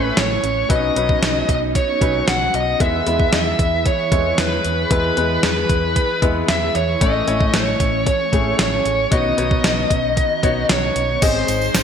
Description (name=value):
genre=1980s-style pop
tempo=114 BPM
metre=4/4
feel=straight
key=E major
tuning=A4 = 440 Hz
part: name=bluesy overdriven lead guitar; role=melody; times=0.0-11.8 s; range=B4 to F#5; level=-20 LUFS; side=equal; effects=distortion, ping-pong delay
part: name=clear concert grand piano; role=accompaniment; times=0.0-11.8 s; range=F#3 to D#5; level=-23 LUFS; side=left 3 dB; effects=none
part: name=string machine, violas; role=sustained chords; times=0.0-11.8 s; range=D#3 to B4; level=-27 LUFS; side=right 1 dB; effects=ensemble chorus
part: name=vintage muted fingered electric bass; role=bass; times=0.0-11.8 s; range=G#1 to E2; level=-25 LUFS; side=equal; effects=none
part: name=clean 12-bit digital drum machine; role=drums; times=0.2-11.8 s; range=crash cymbal, hi-hat, kick drum, snare drum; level=-20 LUFS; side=equal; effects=gated reverb
part: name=tambourine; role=percussion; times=11.2-11.8 s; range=none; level=-30 LUFS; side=right 8 dB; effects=none
room=moderate lush hall reverb, RT60 2.1 s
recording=bright 1980s-style digital production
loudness=-15 LUFS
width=side -7 dB against mid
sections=0.0-11.2 A section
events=none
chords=0.0 A; 0.7 Badd9; 2.8 E; 7.0 A; 9.1 Badd9; 11.2 G#